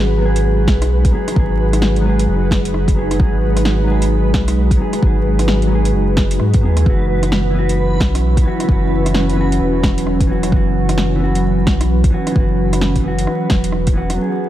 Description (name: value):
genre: future garage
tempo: 131 BPM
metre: 4/4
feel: swing 62% on 16ths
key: unclear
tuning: A4 = 439 Hz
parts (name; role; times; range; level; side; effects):
- mellow electric guitar; accompaniment; 0.0-14.5 s; E3 to G#4; -20 LUFS; equal; sidechain pumping, low-pass filter, tape echo
- ethereal airy pad; sustained chords; 0.0-14.5 s; F#3 to B4; -22 LUFS; equal; ensemble chorus, built-in reverb, sidechain pumping
- warm sub bass; bass; 0.0-14.2 s; E1 to G#2; -17 LUFS; equal; sidechain pumping
- backwards swelling texture; texture; 2.2-14.5 s; B4; -31 LUFS; right 3 dB; built-in reverb
- garage drum kit; drums; 0.4-14.2 s; hi-hat, rim click, snare drum; -22 LUFS; equal; overdrive, studio ambience
- electronic kick drum; drums; 0.7-13.9 s; none; -16 LUFS; equal; studio ambience
room: light reverb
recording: vinyl crackle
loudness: -13 LUFS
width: side -13 dB against mid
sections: 0.0-14.2 A section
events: none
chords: 0.0 G#m7; 6.9 F#7sus4